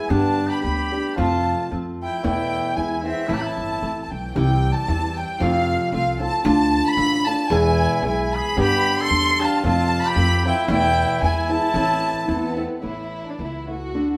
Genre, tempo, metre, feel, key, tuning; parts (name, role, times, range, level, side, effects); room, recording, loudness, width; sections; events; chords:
mexican folk, mariachi; 113 BPM; 2/4; swing 53% on 8ths, rubato; A minor; A4 = 439 Hz
warm chamber violin section; melody; 0.0-14.2 s; B3 to C6; -26 LUFS; equal
clear trumpet; second line; 0.0-4.1, 7.5-12.6 s; C4 to A4; -29 LUFS; equal
nylon-string guitar; accompaniment; 0.0-14.2 s; E2 to G#4; -26 LUFS; equal
upright bass; bass; 0.1-14.2 s; G1 to G2; -27 LUFS; equal
wet stone room reverb, RT60 1.0 s; band playing live in one room; -21 LUFS; mono
0.0-4.4 A section; 4.4-12.8 A section; 12.8-14.2 B section
0.1 G; 1.2 F; 2.2 Esus4; 2.8 E; 3.3 Am; 4.4 C; 5.4 F; 6.5 Dm; 7.5 E; 8.6 G; 9.6 F; 10.7 Esus4; 11.2 E; 11.8 Am; 12.8 Asus2